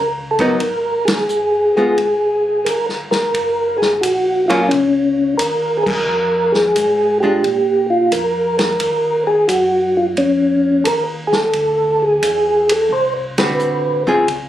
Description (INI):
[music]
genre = soul jazz organ trio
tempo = 88 BPM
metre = 4/4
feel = swing 69% on 8ths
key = unclear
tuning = A4 = 441 Hz
[part]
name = percussive tonewheel organ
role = melody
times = 0.0-14.0 s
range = Db4 to C5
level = -15 LUFS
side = equal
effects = slow rotary speaker, chorus vibrato
[part]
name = mellow tonewheel organ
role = bass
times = 0.0-14.5 s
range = Gb1 to Bb2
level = -30 LUFS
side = equal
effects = slow rotary speaker
[part]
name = archtop guitar, miked and amplified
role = accompaniment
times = 0.4-7.4, 13.4-14.3 s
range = D3 to B4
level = -16 LUFS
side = equal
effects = none
[part]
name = vintage drum kit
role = drums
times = 0.4-14.5 s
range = crash cymbal, hi-hat, kick drum, ride cymbal, snare drum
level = -24 LUFS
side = equal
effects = none
[sound]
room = light reverb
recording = recorded on a phone in the room, club reverb, compression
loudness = -14 LUFS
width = side -12 dB against mid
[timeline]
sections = 0.0-14.5 A section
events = band accent 0.9-1.3, 5.7-6.1, 13.3-13.6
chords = 0.0 Ebm7; 0.6 Abm7; 2.0 Gm; 3.3 Gb; 6.1 Fm6; 7.4 Bb5; 8.8 Ebmadd9; 11.5 D13